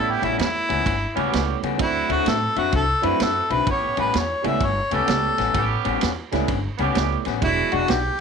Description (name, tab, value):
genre	electric blues shuffle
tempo	128 BPM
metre	4/4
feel	swing 64% on 8ths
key	A mixolydian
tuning	A4 = 440 Hz
part	mellow harmonica	melody	0.0-8.2 s	E4 to E5	-22 LUFS	left 1 dB	overdrive
part	warm grand piano	accompaniment	0.0-8.1 s	F#3 to G4	-28 LUFS	right 15 dB	none
part	mellow horn section	stabs	0.0-8.0 s	G#3 to G4	-28 LUFS	right 13 dB	none
part	upright bass	bass	0.0-8.1 s	E1 to A2	-27 LUFS	equal	none
part	electric guitar through a small old amp	riff	0.2-8.0 s	A2 to F#4	-26 LUFS	left 16 dB	none
part	vintage drum kit	drums	0.2-8.0 s	kick drum, ride cymbal, snare drum	-28 LUFS	right 5 dB	none
room	light reverb, studio ambience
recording	1960s-style stereo with parts hard left and right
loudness	-19 LUFS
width	side -6 dB against mid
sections	0.0-8.2 A section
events	harmonica solo 0.0-8.2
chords	0.0 A9; 1.8 D9; 3.7 A9; 7.4 E9